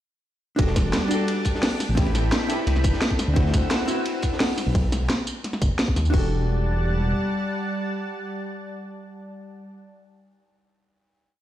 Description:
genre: liquid drum and bass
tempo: 173 BPM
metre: 4/4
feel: straight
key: E minor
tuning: A4 = 441 Hz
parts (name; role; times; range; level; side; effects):
- hollow-body jazz guitar; accompaniment; 0.6-9.8 s; C4 to B4; -28 LUFS; left 1 dB; dub echo
- lush unison pad; sustained chords; 0.6-9.7 s; G3 to E6; -30 LUFS; equal; chorus, sidechain pumping
- dark detuned saw bass; bass; 0.6-7.1 s; E1 to D#2; -22 LUFS; equal; none
- crunchy breakbeat drum kit; drums; 0.6-4.7 s; hi-hat, ride cymbal, snare drum; -33 LUFS; equal; high-pass filter on cymbals, high-pass filter on hats, high-pass filter on snare, high-pass filter on room
- drum and bass drum kit; drums; 0.6-6.2 s; crash cymbal, hi-hat, snare drum, tambourine; -26 LUFS; equal; none
- electronic kick drum; drums; 0.6-6.2 s; none; -22 LUFS; equal; none
room: moderate recital hall reverb, RT60 1.4 s, small room ambience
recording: played on a big sound system in a bare room, stone room reverb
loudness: -21 LUFS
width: side -12 dB against mid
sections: 0.6-6.1 drop; 6.1-8.9 final chord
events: drop 0.6-6.1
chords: 0.6 Em11; 1.8 Am9; 3.2 D13; 4.7 B; 6.1 Em11

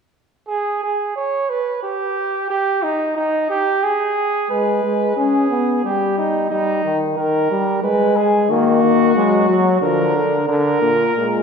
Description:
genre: classical, imitative canzona for brass ensemble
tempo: 90 BPM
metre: 3/4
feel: straight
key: G# minor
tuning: A4 = 438 Hz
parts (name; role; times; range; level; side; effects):
- warm flugelhorn; second line; 0.5-11.4 s; D#4 to C#5; -19 LUFS; right 2 dB; none
- warm euphonium; accompaniment; 4.5-11.4 s; D3 to C#4; -18 LUFS; left 2 dB; none
- clear bass trombone; bass; 8.5-11.4 s; A#2 to G#3; -18 LUFS; equal; none
room: wet concert hall reverb, RT60 1.8 s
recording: recorded in a church or concert hall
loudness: -16 LUFS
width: side -6 dB against mid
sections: 0.5-4.5 A section; 4.5-11.4 B section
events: none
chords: 0.5 N.C.; 4.5 G#m; 5.8 D#/G; 6.5 D#; 7.8 G#m; 8.5 D#m; 9.8 A#/D; 10.5 A#

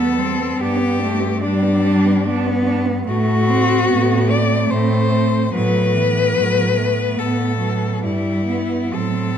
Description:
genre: classical, lyrical piece for cello ensemble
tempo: 72 BPM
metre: 3/4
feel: rubato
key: unclear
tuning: A4 = 439 Hz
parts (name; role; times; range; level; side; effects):
- rich cello; melody; 0.0-9.4 s; D4 to D5; -20 LUFS; left 5 dB; none
- dark cello; second line; 0.0-9.4 s; F#3 to D4; -25 LUFS; right 10 dB; none
- warm cello; accompaniment; 0.0-9.4 s; E3 to C4; -20 LUFS; left 1 dB; none
- rich cello; bass; 0.0-9.4 s; E2 to A2; -21 LUFS; right 3 dB; none
room: wet recital hall reverb, RT60 1.4 s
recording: dark, warm production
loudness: -15 LUFS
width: side -8 dB against mid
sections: 0.0-9.4 A section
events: none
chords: 0.0 Em; 0.6 G; 3.1 F#dim/A; 5.5 F#madd11/A; 8.0 Em/G

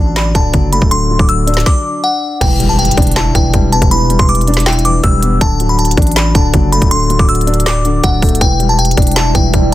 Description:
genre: hip hop, trap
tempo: 160 BPM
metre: 4/4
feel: half-time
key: E minor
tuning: A4 = 440 Hz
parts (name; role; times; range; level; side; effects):
- delicate synth tine bell; melody; 0.0-9.7 s; F#5 to E6; -16 LUFS; left 1 dB; chorus, digital delay
- dark concert grand piano; accompaniment; 0.0-9.7 s; D3 to D5; -17 LUFS; left 3 dB; none
- growling 808-style bass; bass; 0.0-9.7 s; D1 to A1; -14 LUFS; equal; none
- trap drum kit; drums; 0.2-9.6 s; crash cymbal, handclaps, hi-hat, kick drum, snare drum; -13 LUFS; equal; none
- impact; sound effects; 2.5-3.9 s; none; -21 LUFS; right 1 dB; none
- deep dark ambient pad; sustained chords; 8.9-9.7 s; G3 to D5; -21 LUFS; right 4 dB; chorus, built-in reverb
room: little or no reverb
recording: dense, heavily limited modern master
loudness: -9 LUFS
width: side -14 dB against mid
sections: 0.0-2.4 A section; 2.4-9.7 B section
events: stop 1.7-2.4; impact 2.4-3.9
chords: 0.0 D; 2.4 Em7; 5.4 D; 8.4 Em7

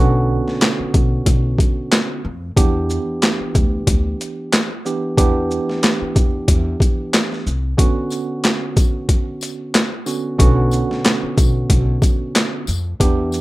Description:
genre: hip hop, boom-bap hip-hop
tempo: 92 BPM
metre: 4/4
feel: swing 55% on 16ths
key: B minor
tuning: A4 = 440 Hz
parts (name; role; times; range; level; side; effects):
- bright tine electric piano; accompaniment; 0.0-13.4 s; D3 to G4; -22 LUFS; right 3 dB; medium stereo tremolo, cassette tape, high-pass filter, low-pass filter
- upright bass; bass; 0.0-13.4 s; B1 to E#2; -21 LUFS; equal; none
- boom bap sampler-style drum kit; drums; 0.5-13.4 s; handclaps, hi-hat, kick drum, shaker, snare drum; -16 LUFS; equal; overdrive
- tambourine; percussion; 8.1-13.4 s; none; -33 LUFS; left 8 dB; none
room: little or no reverb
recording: rough home demo mix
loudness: -15 LUFS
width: side -18 dB against mid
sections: 0.0-13.4 A section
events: none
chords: 0.0 Bmadd9; 2.6 Em7; 7.8 Bmadd9

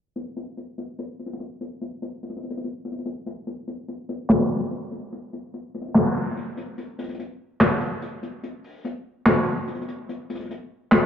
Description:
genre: hip hop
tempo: 145 BPM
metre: 4/4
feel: half-time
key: none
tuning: none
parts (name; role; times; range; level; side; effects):
- jazz brush drum kit; drums; 0.2-11.0 s; handclaps, hi-hat, snare drum; -23 LUFS; left 1 dB; none
room: wet lush hall reverb, RT60 2.0 s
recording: heard muffled through a wall, club reverb, EQ, low-pass filter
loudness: -24 LUFS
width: side -9 dB against mid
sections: 0.2-6.8 A section; 6.8-11.1 B section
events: filter sweep 0.2-6.8; kick muted 6.8-11.1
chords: none

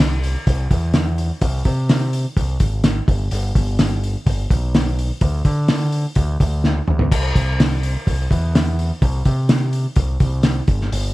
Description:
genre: indie rock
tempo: 126 BPM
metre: 4/4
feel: straight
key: unclear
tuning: A4 = 440 Hz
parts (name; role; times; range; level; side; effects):
- growling picked electric bass; bass; 0.0-11.1 s; G1 to D3; -20 LUFS; equal; overdrive
- cloth-damped thuddy drum kit; drums; 0.0-11.0 s; crash cymbal, hi-hat, kick drum, snare drum, toms; -18 LUFS; equal; none
room: little or no reverb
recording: dark, warm production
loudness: -16 LUFS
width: side -18 dB against mid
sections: 0.0-11.1 A section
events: drum fill 6.6-7.1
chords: none

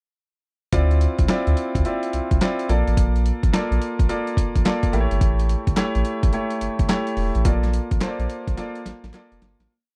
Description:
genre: R&B, new jack swing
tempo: 107 BPM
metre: 4/4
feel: swing 64% on 16ths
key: unclear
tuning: A4 = 445 Hz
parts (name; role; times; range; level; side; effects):
- clear concert grand piano; accompaniment; 0.7-9.7 s; A3 to D5; -27 LUFS; equal; none
- round analog bass; bass; 0.7-9.7 s; E1 to D2; -23 LUFS; equal; none
- dusty soul sampler-style drum kit; drums; 0.7-9.7 s; handclaps, hi-hat, kick drum, snare drum; -25 LUFS; equal; overdrive
- group handclap; percussion; 5.8-9.3 s; none; -38 LUFS; equal; none
room: little or no reverb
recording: dry, close 1970s-style studio recording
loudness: -21 LUFS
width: mono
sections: 0.7-9.7 verse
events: fade-out 7.5-9.7; drum fill 8.6-9.7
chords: 0.7 Dm9; 2.7 Bbmaj7; 4.9 A7; 7.5 Bbmaj7

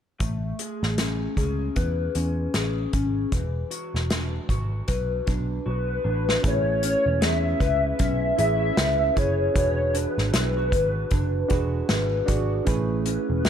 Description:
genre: indie pop, bedroom pop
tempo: 77 BPM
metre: 4/4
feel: swing 60% on 16ths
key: A major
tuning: A4 = 441 Hz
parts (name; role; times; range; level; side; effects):
- electric guitar through a small old amp; accompaniment; 0.2-13.5 s; E3 to B4; -30 LUFS; left 3 dB; wide subtle chorus, vibrato effect
- vintage muted picked electric bass; bass; 0.2-13.5 s; E1 to E2; -26 LUFS; equal; none
- unplugged drum kit; drums; 0.2-13.5 s; hi-hat, kick drum, snare drum; -26 LUFS; equal; none
- warbly nostalgic lead; melody; 5.7-13.5 s; B4 to E5; -25 LUFS; equal; ensemble chorus
- reed electric piano; accompaniment; 6.4-13.5 s; C#4 to D5; -31 LUFS; right 7 dB; none
room: studio reverb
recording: none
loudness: -22 LUFS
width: side -8 dB against mid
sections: 0.2-6.4 A section; 6.4-13.5 B section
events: drum fill 5.7-6.4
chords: 0.2 Amaj9; 3.3 E9; 12.7 Amaj9

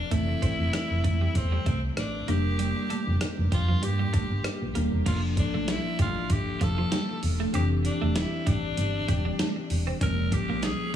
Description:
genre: 1980s-style pop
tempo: 97 BPM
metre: 4/4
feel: swing 55% on 16ths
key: unclear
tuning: A4 = 441 Hz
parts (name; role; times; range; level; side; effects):
- raspy alto saxophone; melody; 0.0-10.9 s; C4 to Bb4; -33 LUFS; equal; digital delay, shimmer reverb
- bell-like tine electric piano; accompaniment; 0.0-11.0 s; E3 to Bb4; -32 LUFS; left 4 dB; analog chorus, shimmer reverb
- solid FM bass; bass; 0.0-10.7 s; Eb1 to G2; -27 LUFS; equal; none
- twelve-string electric guitar; riff; 0.1-10.6 s; F3 to Db4; -35 LUFS; right 8 dB; analog chorus, digital delay, shimmer reverb
- dusty soul sampler-style drum kit; drums; 0.1-10.8 s; crash cymbal, hi-hat, kick drum, rim click, snare drum; -29 LUFS; equal; overdrive
- group handclap; percussion; 10.6-10.8 s; none; -45 LUFS; right 13 dB; none
room: light reverb, digital ambience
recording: small room ambience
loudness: -24 LUFS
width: side -10 dB against mid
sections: 0.0-5.1 A section; 5.1-11.0 B section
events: none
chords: 0.1 Am/F; 2.3 Gm/F; 5.1 Bbmaj7/F; 7.5 Cadd9; 10.0 Db6/F

